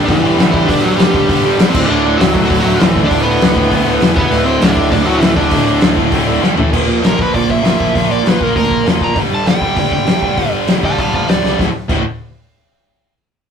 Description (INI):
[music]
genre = punk rock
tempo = 198 BPM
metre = 4/4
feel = straight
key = unclear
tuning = A4 = 440 Hz
[part]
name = overdriven semi-hollow guitar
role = melody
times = 0.0-11.6 s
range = E3 to Bb5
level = -16 LUFS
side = equal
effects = none
[part]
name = crunchy overdriven guitar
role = riff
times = 0.0-6.4 s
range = D2 to G4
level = -21 LUFS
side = right 1 dB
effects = none
[part]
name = distorted electric guitar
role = riff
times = 0.0-12.0 s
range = D2 to Bb3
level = -18 LUFS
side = right 5 dB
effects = distortion
[part]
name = overdriven electric guitar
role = riff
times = 0.0-12.0 s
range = D2 to F#4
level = -19 LUFS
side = left 5 dB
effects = none
[part]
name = growling picked electric bass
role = bass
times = 0.0-12.0 s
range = D1 to Bb2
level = -22 LUFS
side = equal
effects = overdrive
[part]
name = loose indie drum kit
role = drums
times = 0.1-12.0 s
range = crash cymbal, hi-hat, kick drum, snare drum, toms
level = -15 LUFS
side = left 2 dB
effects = none
[sound]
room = light reverb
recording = rough rehearsal-room recording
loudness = -11 LUFS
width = side -7 dB against mid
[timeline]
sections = 0.0-6.7 A section; 6.7-11.6 B section; 11.6-12.8 C section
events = drum fill 6.4-6.7, 11.4; overdriven electric guitar solo 6.7-11.6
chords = 0.0 G; 1.7 D5; 1.9 D; 4.0 E5; 4.3 D; 6.4 G5; 6.6 A5; 6.7 Bb5; 9.2 G5; 11.6 D